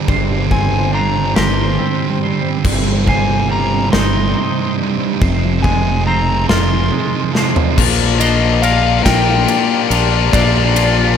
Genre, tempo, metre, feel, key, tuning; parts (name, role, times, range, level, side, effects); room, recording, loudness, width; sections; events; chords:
post-rock; 47 BPM (dotted quarters); 6/8; straight; A4 = 442 Hz
granular cloud pad; sustained chords; 0.0-11.2 s; F3 to C6; -26 LUFS; left 1 dB; built-in reverb
twangy electric guitar; arpeggios; 0.0-11.2 s; C2 to Bb4; -23 LUFS; left 4 dB; tape echo
twelve-string electric guitar; arpeggios; 0.0-11.2 s; Bb4 to Eb5; -28 LUFS; right 3 dB; lush chorus, tape echo
thick fuzz guitar; riff; 0.0-7.8 s; C2 to D3; -19 LUFS; right 10 dB; distortion
fuzz fingered electric bass; bass; 0.1-11.2 s; F1 to Bb1; -17 LUFS; equal; overdrive
big rock drum kit; drums; 0.1-11.0 s; crash cymbal, kick drum, ride cymbal, snare drum, toms; -19 LUFS; equal
overdriven slide guitar; melody; 0.5-11.2 s; D5 to C6; -20 LUFS; left 2 dB; tape echo
tight distorted guitar; riff; 7.8-11.2 s; Bb2 to Bb4; -16 LUFS; left 14 dB; distortion
small room reverb; -12 LUFS; side -8 dB against mid
0.0-7.8 A section; 7.8-11.2 B section
build-up 0.0-7.8; drum fill 7.4-7.8
0.0 Gsus4; 2.7 Cm/G; 5.2 Fm7; 7.8 Bb6